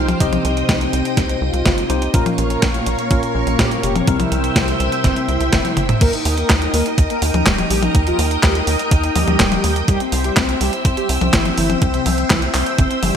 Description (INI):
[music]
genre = italo disco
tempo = 124 BPM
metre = 4/4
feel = straight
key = unclear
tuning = A4 = 440 Hz
[part]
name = mellow synth brass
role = melody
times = 0.0-13.2 s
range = C3 to Bb4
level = -23 LUFS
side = left 1 dB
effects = chorus, ping-pong delay
[part]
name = string machine, full ensemble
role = sustained chords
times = 0.0-13.2 s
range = Bb4 to F6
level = -22 LUFS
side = equal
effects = ensemble chorus
[part]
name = tine electric piano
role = stabs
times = 0.0-5.7 s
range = Bb2 to Eb5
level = -23 LUFS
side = left 2 dB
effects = medium stereo tremolo
[part]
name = tight sequencer bass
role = bass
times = 0.0-13.1 s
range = Eb1 to Bb2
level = -21 LUFS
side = equal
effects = none
[part]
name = clean 12-bit digital drum machine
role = drums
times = 0.1-13.1 s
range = crash cymbal, handclaps, hi-hat, snare drum, toms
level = -20 LUFS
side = equal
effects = none
[part]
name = electronic kick drum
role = drums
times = 0.2-12.9 s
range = none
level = -18 LUFS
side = equal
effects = overdrive
[sound]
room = light reverb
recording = bright 1980s-style digital production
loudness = -14 LUFS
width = side -8 dB against mid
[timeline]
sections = 0.0-6.0 A section; 6.0-13.2 B section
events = drum fill 5.6-6.0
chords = 0.2 Cm; 2.1 Bbm; 4.1 C; 6.0 Eb; 9.9 C